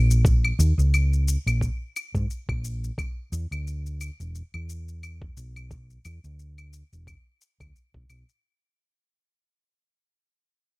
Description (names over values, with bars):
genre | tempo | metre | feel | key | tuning
sunset chillout | 88 BPM | 4/4 | swing 56% on 16ths | unclear | A4 = 440 Hz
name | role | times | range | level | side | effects
hollow-body short-scale fingered electric bass | bass | 0.0-8.2 s | E1 to Ab2 | -23 LUFS | equal | none
shaker and claves | drums | 0.1-8.4 s | none | -32 LUFS | left 3 dB | overdrive
electronic kick drum | drums | 0.2-8.1 s | none | -25 LUFS | equal | none
room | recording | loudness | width
digital ambience | bright 1980s-style digital production | -23 LUFS | side -27 dB against mid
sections
0.0-8.4 A section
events
fade-out 0.0-8.4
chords
none